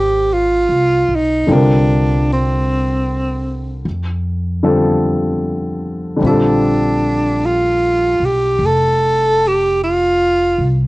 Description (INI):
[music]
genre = jazz ballad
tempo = 50 BPM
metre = 4/4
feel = swing 68% on 8ths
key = unclear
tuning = A4 = 440 Hz
[part]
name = warm tenor saxophone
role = melody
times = 0.0-10.8 s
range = C4 to A4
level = -15 LUFS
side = right 1 dB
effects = cassette tape, plate reverb
[part]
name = warm grand piano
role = accompaniment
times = 0.0-10.9 s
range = D3 to C5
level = -18 LUFS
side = left 1 dB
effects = cassette tape
[part]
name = upright bass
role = bass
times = 0.0-10.9 s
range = F1 to F2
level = -19 LUFS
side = equal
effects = none
[sound]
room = light reverb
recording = home recording on cassette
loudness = -13 LUFS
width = side -20 dB against mid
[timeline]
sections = 0.0-10.9 A section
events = none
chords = 0.0 Fm7; 1.5 C5; 3.8 F69; 6.2 Bbmaj9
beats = 0.28 | 1.47 2.65 3.84 5.03 | 6.21 7.40 8.58 9.78